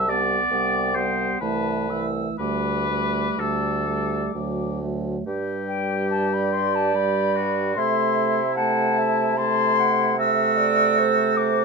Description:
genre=classical, slow romantic movement for wind quintet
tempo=60-76 BPM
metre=3/4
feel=rubato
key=G major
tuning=A4 = 438 Hz
part: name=silver concert flute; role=melody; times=0.0-11.6 s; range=G5 to E6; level=-24 LUFS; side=left 4 dB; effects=none
part: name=warm oboe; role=second line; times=0.0-11.6 s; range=E4 to E5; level=-26 LUFS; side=left 1 dB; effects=none
part: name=dark French horn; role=accompaniment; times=0.0-11.6 s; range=E3 to A3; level=-28 LUFS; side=right 1 dB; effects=none
part: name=mellow bassoon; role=bass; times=0.0-11.6 s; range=C2 to C3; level=-28 LUFS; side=right 2 dB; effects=none
part: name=mellow clarinet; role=accompaniment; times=0.1-11.6 s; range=A3 to A5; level=-27 LUFS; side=right 8 dB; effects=none
room=light reverb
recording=minimal, uncompressed stereo recording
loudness=-20 LUFS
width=side -4 dB against mid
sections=0.0-5.3 A section; 5.3-11.6 B section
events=none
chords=0.0 C5; 1.4 Am/C; 2.4 Dsus4; 4.3 D; 5.3 G; 7.8 Am/C; 10.2 D7/C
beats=0.51 1.41 | 2.39 3.38 4.35 | 5.27 6.11 6.94 | 7.77 8.57 9.38 | 10.18 10.98

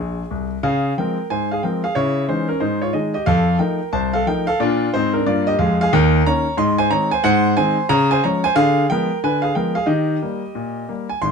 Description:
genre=jazz, stride piano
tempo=182 BPM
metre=4/4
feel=swing 63% on 8ths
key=Ab major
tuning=A4 = 441 Hz
part: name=clear grand piano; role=solo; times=0.0-11.3 s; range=Ab1 to C6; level=-16 LUFS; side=equal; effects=none
room=moderate studio reverb, RT60 0.6 s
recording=dark, warm production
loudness=-16 LUFS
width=side -5 dB against mid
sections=0.6-11.2 A section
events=grand piano fill 0.0-0.6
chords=0.0 Ab; 0.6 Dbmaj7; 2.0 Dbm; 2.6 Ab5; 3.3 F7; 4.6 Bb7; 5.9 Eb7; 6.6 Ab; 7.2 Ab7; 7.9 Db; 8.6 Ddim7; 9.9 Eb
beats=0.30 | 0.63 0.96 1.30 1.63 | 1.96 2.29 2.62 2.95 | 3.28 3.61 3.94 4.27 | 4.60 4.93 5.26 5.59 | 5.92 6.25 6.58 6.92 | 7.25 7.58 7.91 8.24 | 8.57 8.90 9.23 9.56 | 9.89 10.22 10.55 10.88 | 11.21

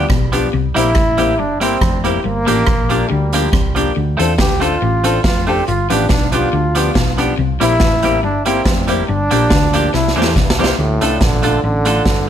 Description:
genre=ska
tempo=140 BPM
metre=4/4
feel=straight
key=D minor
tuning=A4 = 440 Hz
part: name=bright trombone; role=melody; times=0.0-12.2 s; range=G2 to G4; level=-19 LUFS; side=right 1 dB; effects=tape echo
part: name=semi-hollow electric guitar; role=accompaniment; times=0.0-12.0 s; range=E3 to A4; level=-21 LUFS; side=right 4 dB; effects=none
part: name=hollow-body short-scale fingered electric bass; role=bass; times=0.0-12.3 s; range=F1 to E2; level=-19 LUFS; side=equal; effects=none
part: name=electric guitar at the edge of break-up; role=riff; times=0.1-10.5 s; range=F2 to E3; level=-24 LUFS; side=left 8 dB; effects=none
part: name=street-band drum kit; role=drums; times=0.1-12.2 s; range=hi-hat, kick drum, rim click, snare drum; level=-18 LUFS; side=right 1 dB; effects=none
part: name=warm upright piano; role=stabs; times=0.3-12.0 s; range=A3 to A4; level=-21 LUFS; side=left 6 dB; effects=none
room=moderate studio reverb, RT60 0.6 s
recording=none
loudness=-12 LUFS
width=side -9 dB against mid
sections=0.0-10.8 A section; 10.8-12.3 B section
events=drum fill 9.9-10.8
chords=0.0 G7; 0.5 C7; 2.2 Gm7; 4.0 Dm7; 5.7 G7; 7.4 C7; 9.1 Gm7; 9.9 C7; 10.8 Dm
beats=0.10 | 0.53 0.95 1.38 1.81 | 2.24 2.67 3.10 3.53 | 3.96 4.38 4.81 5.24 | 5.67 6.09 6.52 6.95 | 7.38 7.80 8.23 8.66 | 9.08 9.51 9.94 10.36 | 10.79 11.21 11.64 12.06

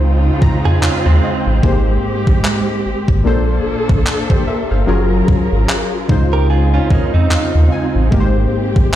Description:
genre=contemporary R&B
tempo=74 BPM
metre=4/4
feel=swing 58% on 16ths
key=unclear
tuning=A4 = 441 Hz
part: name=warm analog keys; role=accompaniment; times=0.0-9.0 s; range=Ab2 to Bb5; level=-19 LUFS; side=left 3 dB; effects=chorus
part: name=warm studio string section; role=sustained chords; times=0.0-9.0 s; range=Db3 to Bb4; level=-20 LUFS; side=right 1 dB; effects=sidechain pumping
part: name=round analog bass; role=bass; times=0.0-8.9 s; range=Gb1 to F2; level=-14 LUFS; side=equal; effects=none
part: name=clean 12-bit digital drum machine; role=drums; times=0.4-9.0 s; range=handclaps, kick drum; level=-15 LUFS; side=equal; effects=none
part: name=direct-recorded clean electric guitar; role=arpeggios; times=0.7-8.1 s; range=Ab3 to Bb4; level=-22 LUFS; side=right 8 dB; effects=tape echo
room=little or no reverb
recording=played on a big sound system in a bare room, stone room reverb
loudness=-12 LUFS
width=side -12 dB against mid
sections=0.0-9.0 A section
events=synth keys fill 0.0-1.6, 6.5-8.1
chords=0.0 Dbmaj9; 1.6 Abmaj9; 3.3 Bbmaj9; 4.9 Gbmaj9; 6.1 Dbmaj9; 8.1 Abmaj9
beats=0.01 0.82 | 1.64 2.45 3.26 4.07 | 4.88 5.69 6.50 7.31 | 8.12 8.93

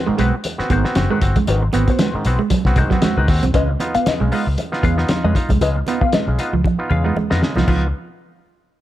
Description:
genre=funk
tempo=116 BPM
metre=4/4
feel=swing 56% on 16ths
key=Db mixolydian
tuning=A4 = 440 Hz
part: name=direct-recorded clean electric guitar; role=accompaniment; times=0.0-7.9 s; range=C4 to F5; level=-24 LUFS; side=left 6 dB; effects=wah
part: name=electric guitar at the edge of break-up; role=riff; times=0.1-7.8 s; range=F3 to Db4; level=-23 LUFS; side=right 7 dB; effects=none
part: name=auto-wah clav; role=stabs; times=0.1-7.9 s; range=Ab2 to Gb4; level=-24 LUFS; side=right 1 dB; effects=overdrive
part: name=vintage muted fingered electric bass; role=bass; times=0.1-7.9 s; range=Gb1 to F2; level=-19 LUFS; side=left 1 dB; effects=none
part: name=cloth-damped thuddy drum kit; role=drums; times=0.2-7.8 s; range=crash cymbal, hi-hat, kick drum, snare drum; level=-20 LUFS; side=left 1 dB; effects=none
part: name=congas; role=percussion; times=0.5-7.9 s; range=none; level=-27 LUFS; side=right 2 dB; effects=none
room=studio ambience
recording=dark, warm production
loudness=-15 LUFS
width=side -13 dB against mid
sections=0.0-3.5 A section; 3.5-7.7 B section; 7.7-8.8 C section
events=drum fill 6.6-7.7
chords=0.0 Ab7#9; 3.5 Db9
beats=0.45 0.97 | 1.48 2.00 2.51 3.03 | 3.54 4.06 4.57 5.09 | 5.60 6.12 6.64 7.15 | 7.67

